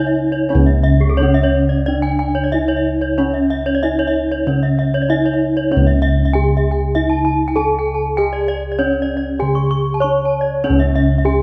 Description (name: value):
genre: Balinese gamelan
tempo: 87-97 BPM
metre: 4/4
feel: straight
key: C# pelog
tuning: A4 = 440 Hz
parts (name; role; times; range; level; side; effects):
- gamelan-type bronze metallophone; melody; 0.0-11.4 s; C#4 to C#5; -21 LUFS; equal; none
- gamelan-type bronze metallophone; arpeggios; 0.0-11.3 s; G#4-45c to C#6; -23 LUFS; equal; none
- gamelan-type bossed gongs; bass; 0.0-11.4 s; C#2 to G#4-45c; -20 LUFS; equal; none
room: wet scoring stage reverb, RT60 2.0 s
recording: none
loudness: -16 LUFS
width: mono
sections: 0.0-5.7 A section; 5.7-11.4 B section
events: none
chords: none